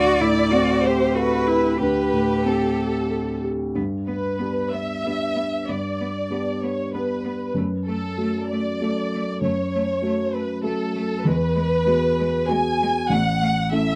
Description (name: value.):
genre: neoclassical piano and strings.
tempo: 90-99 BPM.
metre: 3/4.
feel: rubato.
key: unclear.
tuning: A4 = 440 Hz.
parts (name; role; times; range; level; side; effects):
rich chamber violin section; melody; 0.0-14.0 s; A4 to G#5; -27 LUFS; equal; none.
rich cello; second line; 0.0-13.8 s; G#3 to G4; -29 LUFS; equal; none.
dark grand piano; accompaniment; 0.0-14.0 s; A1 to A4; -26 LUFS; equal; none.
room: moderate studio ambience, RT60 0.5 s.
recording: rough home demo mix.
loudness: -23 LUFS.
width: mono.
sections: 0.0-3.8 A section; 3.8-14.0 B section.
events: none.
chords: 0.0 Am7/D; 3.8 G; 7.5 D/F#; 11.2 Eadd9; 13.1 A.